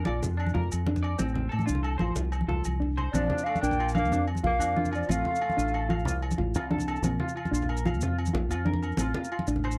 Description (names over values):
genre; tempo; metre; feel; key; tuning
highlife guitar band; 123 BPM (dotted quarters); 12/8; straight; Bb major; A4 = 440 Hz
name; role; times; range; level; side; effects
semi-hollow electric guitar; arpeggios; 0.0-9.8 s; C4 to F5; -39 LUFS; equal; analog chorus, tape echo
fingered electric bass; bass; 0.0-9.8 s; A1 to A2; -32 LUFS; equal; none
mellow electric guitar; accompaniment; 0.1-9.8 s; C4 to F4; -36 LUFS; equal; none
agogo bells; percussion; 0.1-9.8 s; none; -43 LUFS; equal; none
congas; percussion; 0.1-9.7 s; none; -35 LUFS; equal; none
maracas; percussion; 0.2-9.8 s; none; -44 LUFS; equal; none
mellow silver concert flute; melody; 3.1-6.1 s; D5 to G5; -31 LUFS; equal; none
warm tenor saxophone; second line; 3.1-6.1 s; F3 to Bb3; -40 LUFS; equal; none
room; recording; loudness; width
light reverb; dry, close 1970s-style studio recording; -28 LUFS; mono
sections
0.0-3.1 A section; 3.1-9.8 B section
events
drum fill 2.7-3.1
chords
0.0 Bb; 1.2 F/A; 3.1 Bb; 5.1 F/A; 7.0 Bb; 9.0 F/A